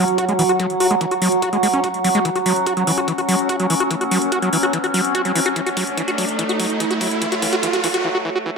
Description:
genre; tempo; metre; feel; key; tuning
psychedelic trance; 145 BPM; 4/4; straight; F# minor; A4 = 440 Hz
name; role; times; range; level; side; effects
overtone-sweeping drone; sustained chords; 0.0-8.1 s; F#3 to F#4; -22 LUFS; equal; chorus, built-in reverb, sidechain pumping
overdriven acid bass; riff; 0.0-8.5 s; E3 to F#4; -21 LUFS; equal; distortion, auto-pan, sidechain pumping, tape echo
warbly tape-like pad; texture; 0.0-8.0 s; F#4 to F#5; -25 LUFS; right 3 dB; chorus, built-in reverb, sidechain pumping
electronic hi-hat; drums; 0.1-8.0 s; none; -25 LUFS; equal; none
electronic kick drum; drums; 0.2-8.0 s; none; -31 LUFS; equal; high-pass filter on kick, high-pass filter on room
riser; sound effects; 3.8-8.0 s; none; -25 LUFS; right 2 dB; none
room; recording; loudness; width
moderate digital room reverb, RT60 1.2 s; high-pass filter; -16 LUFS; side -4 dB against mid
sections
0.0-8.6 A section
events
build-up 0.0-8.6; filter sweep on acid bass 0.0-8.6; filter sweep 0.0-8.6; drum fill 2.3-8.0; riser 3.8-8.0; break 8.0-8.6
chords
0.0 F#5

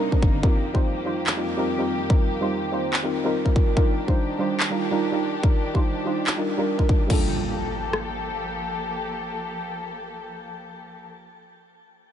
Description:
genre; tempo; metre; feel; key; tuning
future bass; 144 BPM; 4/4; half-time; G minor; A4 = 440 Hz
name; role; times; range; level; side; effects
muted studio string section; sustained chords; 0.0-11.1 s; F2 to A4; -31 LUFS; left 2 dB; sidechain pumping
soft round pluck; accompaniment; 0.1-11.1 s; G3 to C5; -25 LUFS; right 2 dB; lush chorus, cassette tape, sidechain pumping, digital delay
dubstep drum kit; drums; 0.1-8.0 s; kick drum, rim click; -20 LUFS; left 1 dB; none
dubstep drum kit; drums; 1.3-7.2 s; crash cymbal, handclaps; -30 LUFS; equal; none
impact; sound effects; 7.1-11.1 s; none; -33 LUFS; left 1 dB; none
room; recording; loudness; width
light reverb; nothing above 10.7 kHz; -21 LUFS; side -9 dB against mid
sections
0.0-7.1 A section; 7.1-10.4 B section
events
none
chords
0.4 F9sus4; 3.6 Ebmaj7; 7.1 Gm9

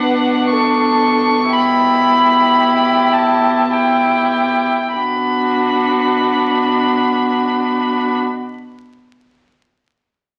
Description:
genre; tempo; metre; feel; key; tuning
classical, slow romantic movement for string quartet; 46-60 BPM; 3/4; rubato; B minor; A4 = 442 Hz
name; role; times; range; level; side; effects
dark violin; melody; 0.0-8.2 s; F#5 to C#6; -19 LUFS; equal; none
dark violin; second line; 0.0-8.2 s; F#4 to B4; -22 LUFS; equal; none
rich viola; accompaniment; 0.0-8.2 s; D4 to E4; -22 LUFS; equal; none
rich cello; bass; 0.0-8.2 s; B2; -22 LUFS; equal; none
room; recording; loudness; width
wet stone room reverb, RT60 1.1 s; very old 78 rpm record, vinyl crackle; -15 LUFS; mono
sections
0.0-5.0 A section; 5.0-8.5 B section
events
slowing down 0.0-5.0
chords
0.0 Bm; 1.5 Em/B; 5.0 Bm

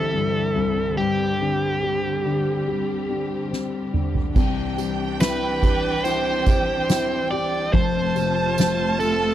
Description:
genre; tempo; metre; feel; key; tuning
pop ballad; 71 BPM; 4/4; straight; C major; A4 = 440 Hz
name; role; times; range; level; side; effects
biting lead guitar; melody; 0.0-9.3 s; G4 to D5; -24 LUFS; right 2 dB; overdrive
dark grand piano; accompaniment; 0.0-9.3 s; F1 to G4; -26 LUFS; left 7 dB; none
warm studio string section; sustained chords; 0.0-9.3 s; D3 to E5; -29 LUFS; right 2 dB; none
soft-mallet drum kit; drums; 3.5-9.2 s; crash cymbal, kick drum, ride cymbal, snare drum, toms; -23 LUFS; right 1 dB; none
warm studio violin section; second line; 4.4-9.3 s; G5 to A5; -28 LUFS; right 5 dB; none
tambourine; percussion; 4.4-9.2 s; none; -38 LUFS; right 11 dB; none
room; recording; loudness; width
light reverb; dry, close 1970s-style studio recording; -20 LUFS; side -11 dB against mid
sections
0.0-4.4 A section; 4.4-9.3 B section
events
drum fill 3.5-4.4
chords
0.0 Cadd9; 1.0 Gsus4; 4.4 Cadd9; 7.7 F

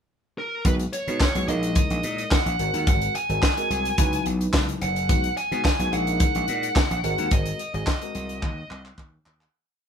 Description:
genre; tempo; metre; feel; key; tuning
early-eighties boogie funk; 108 BPM; 4/4; straight; unclear; A4 = 440 Hz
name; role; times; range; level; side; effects
bluesy overdriven lead guitar; melody; 0.4-8.8 s; A#4 to G#5; -27 LUFS; right 1 dB; distortion
tine electric piano; accompaniment; 0.6-8.5 s; F#3 to B4; -31 LUFS; left 1 dB; slow stereo tremolo
tight funk drum kit; drums; 0.6-9.5 s; handclaps, hi-hat, kick drum, snare drum; -23 LUFS; equal; none
gritty slap bass; bass; 0.7-9.5 s; F#1 to B2; -28 LUFS; equal; overdrive
room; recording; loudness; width
moderate studio reverb, RT60 0.8 s; band playing live in one room; -21 LUFS; side -7 dB against mid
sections
0.0-0.6 pickup bar; 0.6-9.5 verse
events
fade-out 7.3-9.5; drum fill 8.4-9.5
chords
0.0 N.C.; 0.6 B6; 1.5 F#13/A#; 2.6 G#9; 4.0 C#m11; 5.1 B6; 5.9 F#13/A#; 7.0 G#9

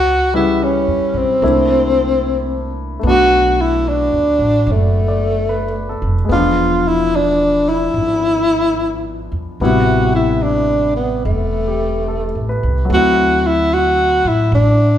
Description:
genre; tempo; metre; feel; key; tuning
jazz ballad; 74 BPM; 4/4; swing 66% on 8ths; unclear; A4 = 440 Hz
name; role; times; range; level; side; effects
mellow tenor saxophone; melody; 0.0-15.0 s; A3 to F#4; -15 LUFS; equal; none
upright bass; bass; 0.0-15.0 s; E1 to A2; -19 LUFS; right 1 dB; none
clear grand piano; accompaniment; 0.3-15.0 s; C3 to D5; -20 LUFS; left 3 dB; none
room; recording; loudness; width
wet large studio reverb, RT60 1.4 s; band playing live in one room; -13 LUFS; side -10 dB against mid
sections
0.0-15.0 A section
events
none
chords
0.0 C#m7b5; 1.4 C13; 3.0 Bm7; 6.3 E7b9; 9.6 Am9; 12.9 D9

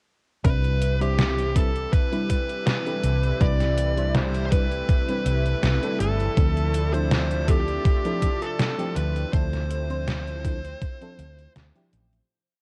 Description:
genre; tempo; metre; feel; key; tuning
vaporwave; 81 BPM; 4/4; swing 53% on 16ths; C major; A4 = 442 Hz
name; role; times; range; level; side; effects
mellow FM electric piano; accompaniment; 0.4-12.3 s; F3 to C5; -34 LUFS; equal; phaser, subtle chorus
lush unison pad; sustained chords; 0.4-12.3 s; C3 to E4; -36 LUFS; equal; chorus
hollow-body short-scale fingered electric bass; bass; 0.4-12.2 s; G1 to D2; -27 LUFS; equal; none
detuned 8-bit digital drum machine; drums; 0.4-12.3 s; hi-hat, snare drum; -30 LUFS; equal; overdrive, gated reverb
electronic kick drum; drums; 0.4-11.0 s; none; -24 LUFS; equal; overdrive
fuzz lead guitar; melody; 0.5-11.5 s; G4 to D5; -31 LUFS; equal; distortion, tape echo
room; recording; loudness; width
light reverb; cassette tape; -24 LUFS; mono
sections
0.4-12.3 groove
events
fade-out 8.3-12.3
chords
0.4 Cmaj7; 6.4 Dm9

